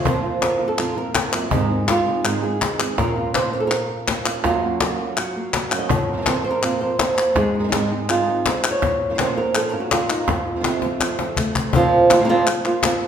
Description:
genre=flamenco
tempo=164 BPM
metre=4/4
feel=straight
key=unclear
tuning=A4 = 438 Hz
part: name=flamenco guitar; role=melody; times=0.0-13.1 s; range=F2 to Eb5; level=-20 LUFS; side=right 2 dB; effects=none
part: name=flamenco guitar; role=stabs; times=0.0-11.4 s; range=F2 to Ab4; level=-26 LUFS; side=right 4 dB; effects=none
part: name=cajon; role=percussion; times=0.1-13.0 s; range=none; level=-24 LUFS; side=left 4 dB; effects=none
part: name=palmas hand claps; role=percussion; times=0.1-13.0 s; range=none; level=-25 LUFS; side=left 2 dB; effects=none
room=wet recital hall reverb, RT60 1.4 s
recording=recorded in a church or concert hall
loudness=-18 LUFS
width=side -8 dB against mid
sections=0.1-11.7 A section; 11.7-13.1 B section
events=drum fill 10.8-11.7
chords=0.1 Fsus4; 1.5 Ab; 3.0 Bbm; 4.4 Gb; 5.9 Fsus4; 7.4 Ab; 8.8 Bbm; 10.3 F; 11.7 Fsus4

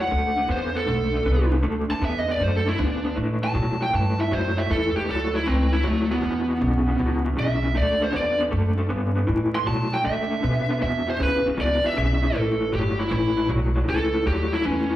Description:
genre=electric blues shuffle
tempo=157 BPM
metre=4/4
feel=swing 67% on 8ths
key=A mixolydian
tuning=A4 = 441 Hz
part: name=lead guitar through a small cranked amp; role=melody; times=0.0-15.0 s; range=A3 to C6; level=-25 LUFS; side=right 1 dB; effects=overdrive, slapback echo
part: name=electric guitar through a small old amp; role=riff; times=0.0-15.0 s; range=E2 to B3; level=-26 LUFS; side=left 1 dB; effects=tremolo, slapback echo
part: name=upright bass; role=bass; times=0.0-15.0 s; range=G1 to D3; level=-25 LUFS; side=equal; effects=none
room=light reverb, small room ambience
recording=live gig heard through the venue's PA, club reverb, vinyl crackle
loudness=-20 LUFS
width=side -14 dB against mid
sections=0.0-12.3 A section; 12.3-15.0 A section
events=lead electric guitar solo 0.0-12.3, 12.3-15.0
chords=0.1 D13; 3.2 A7sus2; 6.2 E5; 7.8 D69; 9.3 Asus2; 10.1 Dsus2; 10.8 E5; 12.3 A13

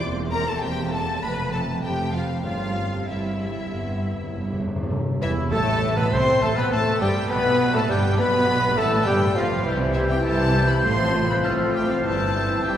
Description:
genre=quick classical-period movement for symphony orchestra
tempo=100 BPM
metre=4/4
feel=rubato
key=C major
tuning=A4 = 440 Hz
part: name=clear chamber violin section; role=second line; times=0.0-12.8 s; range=A3 to B5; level=-32 LUFS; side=left 2 dB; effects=none
part: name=clear chamber viola section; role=accompaniment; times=0.0-12.8 s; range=E3 to B4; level=-31 LUFS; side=right 1 dB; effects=none
part: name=mellow French horn section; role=sustained chords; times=0.0-12.8 s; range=E3 to F4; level=-30 LUFS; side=left 2 dB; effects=none
part: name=clear chamber double bass section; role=bass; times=0.0-12.8 s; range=E1 to C2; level=-28 LUFS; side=right 2 dB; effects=none
part: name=warm chamber cello section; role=bass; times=0.0-12.8 s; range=E2 to C3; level=-28 LUFS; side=right 2 dB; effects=none
part: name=warm chamber violin section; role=melody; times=0.3-12.8 s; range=E5 to C6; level=-30 LUFS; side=left 3 dB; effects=none
part: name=timpani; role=percussion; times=2.4-5.8, 12.0-12.8 s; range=G2 to C3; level=-32 LUFS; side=left 1 dB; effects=none
part: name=silver concert flute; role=second line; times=5.2-12.8 s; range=E5 to G6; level=-29 LUFS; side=equal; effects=none
part: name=warm clarinet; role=second line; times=5.2-12.8 s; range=E4 to C5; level=-29 LUFS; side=left 2 dB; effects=none
part: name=warm oboe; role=second line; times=5.2-12.8 s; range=E4 to C5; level=-31 LUFS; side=equal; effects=none
part: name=warm bassoon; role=accompaniment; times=5.2-12.8 s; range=E3 to C4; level=-27 LUFS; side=equal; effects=none
room=wet cathedral reverb, RT60 4.3 s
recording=recorded in a church or concert hall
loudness=-20 LUFS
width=side -10 dB against mid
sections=0.0-4.9 A section; 4.9-12.8 B section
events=timpani fill 3.7-4.9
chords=0.0 C7/E; 1.2 F; 2.4 C/G; 3.7 G; 4.9 C; 7.3 G7; 9.7 C; 10.8 F/A; 12.0 C/G

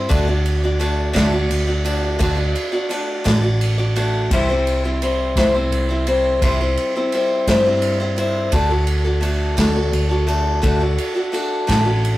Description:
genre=folk rock and heartland rock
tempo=57 BPM (dotted quarters)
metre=6/8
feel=straight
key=D mixolydian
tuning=A4 = 440 Hz
part: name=picked acoustic archtop guitar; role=accompaniment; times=0.0-12.2 s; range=C3 to D5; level=-20 LUFS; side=left 1 dB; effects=none
part: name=hollow-body short-scale picked electric bass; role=bass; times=0.0-12.2 s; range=A1 to G2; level=-20 LUFS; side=equal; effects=none
part: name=unplugged drum kit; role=drums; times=0.1-12.2 s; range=crash cymbal, kick drum, ride cymbal, snare drum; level=-22 LUFS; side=right 1 dB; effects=none
room=light reverb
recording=rough rehearsal-room recording, warm saturation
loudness=-16 LUFS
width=side -16 dB against mid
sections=0.0-12.2 A section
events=none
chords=0.1 D; 4.3 C; 8.5 D

